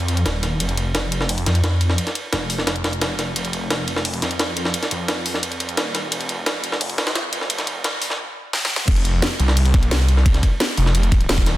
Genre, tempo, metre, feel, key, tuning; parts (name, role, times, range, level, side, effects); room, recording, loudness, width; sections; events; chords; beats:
dark technical drum and bass; 174 BPM; 4/4; straight; A4 = 440 Hz
snarling distorted saw bass; bass; 0.0-11.6 s; Eb1 to F2; -21 LUFS; equal; distortion, overdrive, sidechain pumping
drum and bass drum kit; drums; 0.0-11.5 s; crash cymbal, hi-hat, snare drum; -24 LUFS; left 1 dB; high-pass filter on hats, high-pass filter on snare, high-pass filter on cymbals
breakbeat sampler-style drum kit; drums; 0.1-11.5 s; hi-hat, ride cymbal, snare drum; -24 LUFS; right 1 dB; high-pass filter on snare, high-pass filter on cymbals, high-pass filter on hats
electronic kick drum; drums; 8.9-11.4 s; -16 LUFS; equal
light reverb; dense, heavily limited modern master, high-pass filter; -18 LUFS; side -15 dB against mid
0.0-8.9 A section; 8.9-11.6 B section
build-up 0.0-8.9; filter sweep 0.0-8.9; drum fill 8.5-8.9; drop 8.9-11.6
0.26 | 0.60 0.95 1.29 1.64 | 1.98 2.33 2.67 3.02 | 3.36 3.71 4.05 4.39 | 4.74 5.08 5.43 5.77 | 6.12 6.46 6.81 7.15 | 7.50 7.84 8.19 8.53 | 8.88 9.22 9.57 9.91 | 10.26 10.60 10.95 11.29